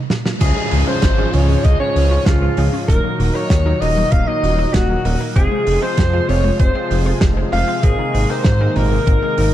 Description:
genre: synthwave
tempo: 97 BPM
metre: 4/4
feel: straight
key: Db major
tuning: A4 = 439 Hz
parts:
  - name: analog pluck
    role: arpeggios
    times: 0.0-9.5 s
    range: Bb2 to F4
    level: -26 LUFS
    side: equal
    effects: chorus, ping-pong delay
  - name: warm soul drum kit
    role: drums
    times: 0.1-9.5 s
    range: crash cymbal, hi-hat, snare drum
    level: -24 LUFS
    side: right 2 dB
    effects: none
  - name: warm alto saxophone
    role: melody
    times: 0.4-9.5 s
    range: F4 to F5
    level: -21 LUFS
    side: equal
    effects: ping-pong delay
  - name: airy dreamy lead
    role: second line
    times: 0.4-9.5 s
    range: F4 to F5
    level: -28 LUFS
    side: left 1 dB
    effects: chorus
  - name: warm analog pad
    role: sustained chords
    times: 0.4-9.5 s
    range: Ab2 to Ab4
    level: -24 LUFS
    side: left 1 dB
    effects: lush chorus, sidechain pumping
  - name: warm electric grand piano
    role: stabs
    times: 0.4-9.5 s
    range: F3 to C5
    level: -26 LUFS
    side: right 4 dB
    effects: none
  - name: dark detuned saw bass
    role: bass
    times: 0.4-9.5 s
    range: Eb1 to Ab2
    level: -17 LUFS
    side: equal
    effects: none
  - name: electronic kick drum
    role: drums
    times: 0.4-9.2 s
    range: none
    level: -16 LUFS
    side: equal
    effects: none
  - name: downlifter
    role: sound effects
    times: 0.4-5.4 s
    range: none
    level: -28 LUFS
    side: equal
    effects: none
room: light reverb, small room ambience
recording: dark, warm production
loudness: -14 LUFS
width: side -12 dB against mid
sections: 0.4-9.5 A section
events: break 0.0-0.4; drum fill 0.0-0.4; band accent 0.3-0.6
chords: 0.4 Db; 2.9 Ebm; 5.4 Fm; 7.8 Abadd9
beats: | 0.41 1.03 1.65 2.27 | 2.88 3.50 4.12 4.74 | 5.36 5.98 6.60 7.21 | 7.83 8.45 9.07

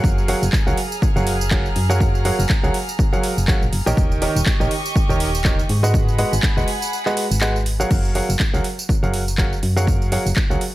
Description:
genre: piano house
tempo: 122 BPM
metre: 4/4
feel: swing 56% on 16ths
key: F# major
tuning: A4 = 440 Hz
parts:
  - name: rich chamber violin section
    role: sustained chords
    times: 0.0-7.9 s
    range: G4 to E#6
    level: -29 LUFS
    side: right 1 dB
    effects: sidechain pumping
  - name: bright baby grand piano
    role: riff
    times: 0.0-10.6 s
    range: D#3 to G5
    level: -23 LUFS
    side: right 1 dB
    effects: sidechain pumping, dub echo
  - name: solid FM bass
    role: bass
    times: 0.0-10.6 s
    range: D#1 to G#2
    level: -21 LUFS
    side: equal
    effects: tube saturation, sidechain pumping
  - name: electronic kick drum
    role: drums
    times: 0.0-10.5 s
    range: none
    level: -19 LUFS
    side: equal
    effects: studio reverb
  - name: garage drum kit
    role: drums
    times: 0.0-10.7 s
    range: crash cymbal, handclaps, hi-hat, tambourine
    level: -26 LUFS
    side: right 1 dB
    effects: overdrive, studio reverb
room: little or no reverb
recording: none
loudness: -16 LUFS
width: side -16 dB against mid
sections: 0.0-7.9 A section; 7.9-10.7 B section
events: drop 0.0-7.9; kick drops out 6.9-7.9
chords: 0.0 F#maj9; 4.0 D#7; 5.9 G#m7; 7.9 F#maj9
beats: | 0.04 0.53 1.02 1.51 | 2.00 2.50 2.99 3.48 | 3.97 4.46 4.96 5.45 | 5.94 6.43 6.92 7.42 | 7.91 8.40 8.89 9.38 | 9.87 10.37

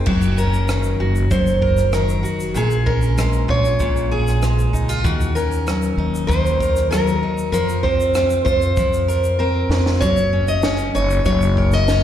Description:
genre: acoustic pop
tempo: 96 BPM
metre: 4/4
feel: straight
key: unclear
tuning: A4 = 444 Hz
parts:
  - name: fingerpicked steel-string acoustic guitar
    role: melody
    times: 0.0-12.0 s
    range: Gb4 to Eb5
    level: -21 LUFS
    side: equal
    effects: slapback echo
  - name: fingerpicked steel-string acoustic guitar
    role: accompaniment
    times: 0.0-12.0 s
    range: Bb2 to Bb4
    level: -22 LUFS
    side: equal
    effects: slapback echo
  - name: upright bass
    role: bass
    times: 0.0-12.0 s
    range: Gb1 to F2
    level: -20 LUFS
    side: equal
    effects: none
  - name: compact cocktail drum kit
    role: drums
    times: 0.1-12.0 s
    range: crash cymbal, kick drum, rim click, shaker, snare drum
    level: -24 LUFS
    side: equal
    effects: none
room: light reverb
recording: live gig heard through the venue's PA, recital hall reverb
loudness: -16 LUFS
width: side -10 dB against mid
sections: 0.1-12.0 A section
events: drum fill 9.4-10.0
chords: 0.1 Gb6; 2.6 Bbm7; 5.0 Ebm7; 7.5 Fsus4; 10.0 Gb6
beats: | 0.07 0.69 1.31 1.94 | 2.56 3.18 3.80 4.42 | 5.04 5.67 6.29 6.91 | 7.53 8.15 8.78 9.40 | 10.02 10.64 11.27 11.89

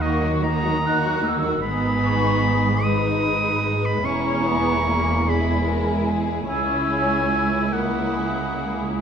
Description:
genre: cinematic, emotional film score for orchestra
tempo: 49 BPM (dotted quarters)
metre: 6/8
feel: rubato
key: unclear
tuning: A4 = 441 Hz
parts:
  - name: muted symphonic violin section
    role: melody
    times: 0.0-9.0 s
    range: F#4 to B4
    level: -30 LUFS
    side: left 5 dB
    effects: none
  - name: bright oboe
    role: second line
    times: 0.0-9.0 s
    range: D#5 to D#6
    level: -26 LUFS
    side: equal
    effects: none
  - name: mellow flute section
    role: second line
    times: 0.0-9.0 s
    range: G#5 to F#6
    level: -28 LUFS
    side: equal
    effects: none
  - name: muted symphonic violin section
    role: second line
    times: 0.0-9.0 s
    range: D#4 to F#4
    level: -29 LUFS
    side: left 2 dB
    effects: none
  - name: muted symphonic viola section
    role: accompaniment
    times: 0.0-9.0 s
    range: F#3 to C#4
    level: -27 LUFS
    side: equal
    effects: none
  - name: muted symphonic cello section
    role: bass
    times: 0.0-9.0 s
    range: C#2 to D#3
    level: -26 LUFS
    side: right 3 dB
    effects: none
  - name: muted symphonic double bass section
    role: bass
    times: 0.0-9.0 s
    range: E1 to D#2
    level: -27 LUFS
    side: right 2 dB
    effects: none
room: moderate scoring stage reverb, RT60 1.8 s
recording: minimal, uncompressed stereo recording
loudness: -19 LUFS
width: side -7 dB against mid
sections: 0.0-9.0 A section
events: none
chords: 0.0 D#m; 1.6 G#m; 4.0 E; 6.5 C#m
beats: 0.42 | 1.63 2.84 | 4.05 5.27 | 6.49 7.73

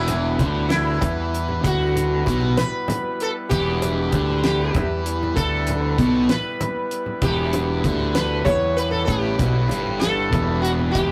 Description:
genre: psychedelic rock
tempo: 64 BPM (dotted quarters)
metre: 6/8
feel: straight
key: E minor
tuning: A4 = 440 Hz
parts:
  - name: sitar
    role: melody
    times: 0.0-11.1 s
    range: E4 to C#5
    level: -27 LUFS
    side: equal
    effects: none
  - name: combo organ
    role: sustained chords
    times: 0.0-11.1 s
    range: G3 to B4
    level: -31 LUFS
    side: equal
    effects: none
  - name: fuzz guitar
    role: riff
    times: 0.0-11.1 s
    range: E2 to E3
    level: -27 LUFS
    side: equal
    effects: distortion, phaser
  - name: fuzz fingered electric bass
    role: bass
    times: 0.0-11.1 s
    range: E1 to E2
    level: -27 LUFS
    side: equal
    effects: overdrive
  - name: damped 70s drum kit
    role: drums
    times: 0.1-11.1 s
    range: hi-hat, kick drum, snare drum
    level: -28 LUFS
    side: equal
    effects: none
  - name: congas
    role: percussion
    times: 0.1-11.1 s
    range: none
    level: -31 LUFS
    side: equal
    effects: none
room: moderate small room reverb, RT60 0.5 s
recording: rough rehearsal-room recording, warm saturation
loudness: -21 LUFS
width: mono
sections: 0.0-11.1 A section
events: none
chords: 0.0 Em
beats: 0.71 | 1.64 2.58 | 3.51 4.44 | 5.37 6.30 | 7.23 8.16 | 9.09 10.02 | 10.95

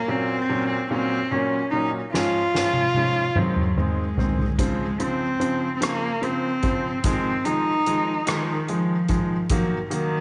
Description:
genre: six-eight pop ballad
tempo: 49 BPM (dotted quarters)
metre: 6/8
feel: straight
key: Db major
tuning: A4 = 440 Hz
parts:
  - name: warm cello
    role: melody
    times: 0.0-10.2 s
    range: Eb3 to F4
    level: -26 LUFS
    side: equal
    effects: none
  - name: clear baby grand piano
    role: accompaniment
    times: 0.1-10.2 s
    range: Ab2 to Db4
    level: -29 LUFS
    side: equal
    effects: none
  - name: soft-mallet drum kit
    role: drums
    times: 2.1-10.1 s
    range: hi-hat, kick drum, rim click, snare drum, toms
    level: -28 LUFS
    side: equal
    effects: none
room: moderate echo chamber reverb, RT60 2.1 s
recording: nothing above 10.3 kHz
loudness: -23 LUFS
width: mono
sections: 0.0-10.2 A section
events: drum fill 2.1-4.6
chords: 0.0 Gb/Bb; 2.1 Db/Ab; 3.4 Ab; 4.6 Dbmaj7; 7.0 Fm7; 9.5 Ebm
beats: 0.90 | 2.13 3.36 | 4.59 5.82 | 7.04 8.27 | 9.50

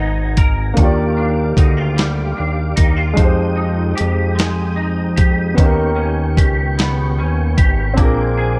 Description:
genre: slow six-eight R&B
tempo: 50 BPM (dotted quarters)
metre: 6/8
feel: straight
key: Eb major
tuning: A4 = 440 Hz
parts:
  - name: semi-hollow electric guitar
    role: second line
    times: 0.0-8.6 s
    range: Eb3 to Bb4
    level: -26 LUFS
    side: equal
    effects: ensemble chorus
  - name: warm grand piano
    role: accompaniment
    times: 0.0-8.6 s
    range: Ab3 to Eb5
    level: -25 LUFS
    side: equal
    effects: none
  - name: tonewheel organ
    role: sustained chords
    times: 0.0-8.6 s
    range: Ab3 to Eb6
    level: -30 LUFS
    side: equal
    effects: chorus vibrato, slow rotary speaker
  - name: fat analog bass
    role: bass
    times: 0.0-8.6 s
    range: Ab1 to F2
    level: -20 LUFS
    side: equal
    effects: none
  - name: dusty soul sampler-style drum kit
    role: drums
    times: 0.4-8.2 s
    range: hi-hat, kick drum, snare drum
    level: -16 LUFS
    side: equal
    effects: none
room: digital ambience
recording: none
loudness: -16 LUFS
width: mono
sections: 0.0-8.6 A section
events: none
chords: 0.0 Abmadd9; 0.8 Ebmaj9; 3.2 Fm9; 5.6 Eb7b13; 8.0 Bb9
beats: | 0.78 1.98 | 3.18 4.38 | 5.58 6.78 | 7.98

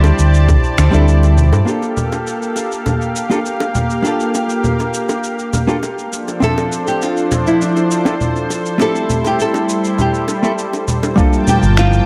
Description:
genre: sunset chillout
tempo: 101 BPM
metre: 4/4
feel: straight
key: G dorian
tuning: A4 = 442 Hz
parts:
  - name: hollow-body jazz guitar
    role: accompaniment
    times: 0.0-12.1 s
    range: G3 to E5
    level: -22 LUFS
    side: equal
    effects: tape echo
  - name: lush unison pad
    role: sustained chords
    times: 0.0-12.1 s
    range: F3 to A5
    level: -22 LUFS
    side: equal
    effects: chorus
  - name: fingered electric bass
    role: bass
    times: 0.0-1.6, 11.6-12.0 s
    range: G1 to G2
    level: -13 LUFS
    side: equal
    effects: none
  - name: electronic cabasa, congas and finger snaps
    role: drums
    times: 0.0-12.0 s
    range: none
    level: -23 LUFS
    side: equal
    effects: studio ambience
  - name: bongos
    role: percussion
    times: 0.0-11.1 s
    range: none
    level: -28 LUFS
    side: equal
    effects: none
  - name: electronic kick drum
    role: drums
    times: 0.5-0.6, 11.2-11.3 s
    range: none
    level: -16 LUFS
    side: equal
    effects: studio ambience
  - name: nylon-string guitar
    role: melody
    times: 6.4-12.1 s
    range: D4 to A4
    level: -21 LUFS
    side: equal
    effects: digital delay
room: moderate lush hall reverb, RT60 2.4 s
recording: dark, warm production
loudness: -15 LUFS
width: mono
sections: 0.0-1.7 A section; 1.7-11.2 B section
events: none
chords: 0.0 D7sus4; 1.7 Gm9; 6.1 Dm7; 8.8 Am7; 11.2 Gm9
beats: 0.49 1.08 | 1.67 2.27 2.86 3.46 | 4.05 4.64 5.24 5.83 | 6.43 7.02 7.61 8.21 | 8.80 9.40 9.99 10.59 | 11.18 11.77

